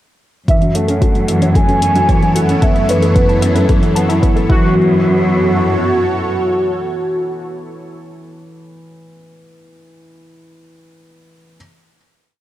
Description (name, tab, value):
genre	piano and strings electronica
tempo	112 BPM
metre	4/4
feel	straight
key	F# minor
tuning	A4 = 440 Hz
part	warm velvety synth lead	melody	0.5-7.5 s	F#4 to G#5	-18 LUFS	equal	chorus
part	lush unison pad	sustained chords	0.5-8.0 s	B3 to C#5	-24 LUFS	right 1 dB	chorus, phaser
part	felt-muted upright piano	riff	0.5-11.6 s	E3 to E4	-19 LUFS	equal	none
part	rich studio cello section	bass	0.5-6.3 s	F#2	-17 LUFS	equal	tube saturation, sidechain pumping
part	electronic hi-hat	drums	0.5-4.5 s	none	-28 LUFS	left 3 dB	overdrive
part	electronic kick drum	drums	0.5-4.6 s	none	-14 LUFS	equal	overdrive
part	warbly dusty pluck	arpeggios	0.6-5.0 s	E4 to A5	-26 LUFS	left 3 dB	chorus, cassette tape, sidechain pumping, tape echo
room	light reverb, digital ambience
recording	dark, warm production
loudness	-11 LUFS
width	side -13 dB against mid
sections	0.5-4.8 build; 4.8-9.1 final chord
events	build-up 0.5-4.8; filter sweep on soft synth lead 0.5-4.8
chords	0.5 F#m7; 4.5 F#7sus4; 4.8 F#m7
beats	| 0.48 1.02 1.55 2.09 | 2.62 3.16 3.70 4.23 | 4.77 5.30 5.84 6.38 | 6.91 7.45 7.98 8.52